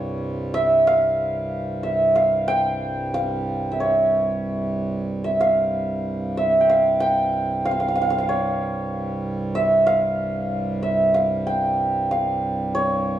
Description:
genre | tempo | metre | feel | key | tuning
indian classical | 93 BPM | 7/4 | straight | unclear | A4 = 440 Hz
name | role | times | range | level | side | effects
santur | melody | 0.0-13.2 s | Db5 to G5 | -20 LUFS | right 1 dB | none
hand-pumped harmonium | drone | 0.0-13.2 s | C2 to G2 | -27 LUFS | right 2 dB | none
room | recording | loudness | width
moderate recital hall reverb, RT60 1.4 s | dark, warm production | -19 LUFS | side -12 dB against mid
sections
0.0-13.2 A section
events
none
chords
none

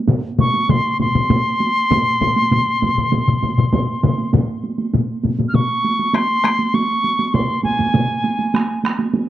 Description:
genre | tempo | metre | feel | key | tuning
japanese traditional, taiko drum ensemble | 99 BPM | 4/4 | straight | unclear | A4 = 440 Hz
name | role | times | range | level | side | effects
solo taiko drums | percussion | 0.1-9.3 s | none | -20 LUFS | right 3 dB | none
taiko ensemble | percussion | 0.1-6.6 s | none | -19 LUFS | left 4 dB | none
taiko ensemble | percussion | 0.1-9.0 s | none | -22 LUFS | right 1 dB | none
bright reedy wooden piccolo | melody | 0.4-8.8 s | Ab5 to F6 | -19 LUFS | equal | none
room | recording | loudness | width
light reverb, studio reverb | dry, close 1970s-style studio recording | -15 LUFS | side -13 dB against mid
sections
0.0-4.9 A section; 4.9-9.3 B section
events
none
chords
none

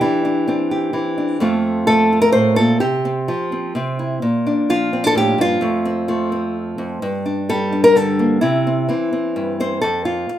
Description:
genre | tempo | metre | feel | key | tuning
folk, solo fingerstyle acoustic guitar | 129 BPM | 3/4 | straight | unclear | A4 = 440 Hz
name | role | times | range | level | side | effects
nylon-string guitar | solo | 0.0-10.4 s | F2 to C5 | -16 LUFS | equal | none
room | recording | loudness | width
light reverb | band playing live in one room | -16 LUFS | side -11 dB against mid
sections
0.0-9.8 A section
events
none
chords
0.0 Cadd9/E; 1.4 F; 2.8 Csus4; 3.7 C; 4.2 Bb; 5.6 F; 7.0 Gmadd9; 8.4 C; 9.8 N.C.

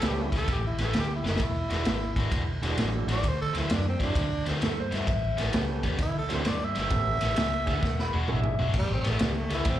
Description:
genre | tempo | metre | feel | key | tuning
electric blues shuffle | 131 BPM | 4/4 | swing 66% on 8ths | A mixolydian | A4 = 441 Hz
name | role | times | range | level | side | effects
growling tenor saxophone | melody | 0.0-9.8 s | G3 to E5 | -32 LUFS | right 2 dB | plate reverb, slapback echo
tonewheel organ | accompaniment | 0.0-8.6 s | F#3 to G#4 | -36 LUFS | right 5 dB | overdrive, slow rotary speaker, plate reverb, slapback echo
overdriven electric guitar | riff | 0.0-9.8 s | A2 to B4 | -35 LUFS | left 4 dB | slapback echo
vintage muted fingered electric bass | bass | 0.0-9.8 s | E1 to G2 | -30 LUFS | equal | none
raw garage drum kit | drums | 0.0-9.8 s | crash cymbal, kick drum, ride cymbal, snare drum, toms | -29 LUFS | equal | none
overdriven slide guitar | second line | 4.6-8.7 s | A4 to B5 | -34 LUFS | left 2 dB | plate reverb, slapback echo
room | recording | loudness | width
light reverb | live gig heard through the venue's PA, club reverb | -25 LUFS | side -12 dB against mid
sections
0.0-8.7 A section; 8.7-9.8 B section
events
drum fill 1.2, 7.8-8.7; tenor saxophone solo 8.7-9.8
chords
0.0 A9; 1.4 E9; 3.2 D9; 5.1 A9; 6.0 D9; 6.9 A9; 7.8 E9; 8.7 A9

